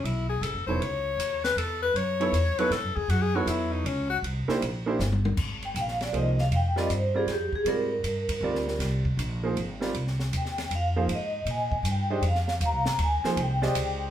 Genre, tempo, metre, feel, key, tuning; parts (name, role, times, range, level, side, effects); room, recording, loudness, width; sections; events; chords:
modal jazz; 158 BPM; 3/4; swing 66% on 8ths; F# dorian, F dorian from 5.4 s; A4 = 440 Hz
clear tenor saxophone; second line; 0.0-4.2 s; C#4 to C#5; -28 LUFS; left 5 dB
upright bass; bass; 0.0-14.1 s; E1 to Bb2; -28 LUFS; equal
compact cocktail drum kit; drums; 0.1-13.9 s; crash cymbal, hi-hat, kick drum, ride cymbal, snare drum, toms; -35 LUFS; equal
clear upright piano; accompaniment; 0.7-14.1 s; F3 to Eb5; -29 LUFS; right 3 dB
vibraphone with medium mallets; melody; 5.7-14.0 s; G4 to Bb5; -29 LUFS; equal
wet studio reverb, RT60 0.6 s; heard from further back in the room; -25 LUFS; side -10 dB against mid
0.0-5.4 A section; 5.4-14.1 A section
tenor saxophone solo 0.0-5.4; drum fill 5.0-5.4; vibraphone solo 5.4-14.1
0.0 F#m7; 4.2 C7; 5.4 Fm11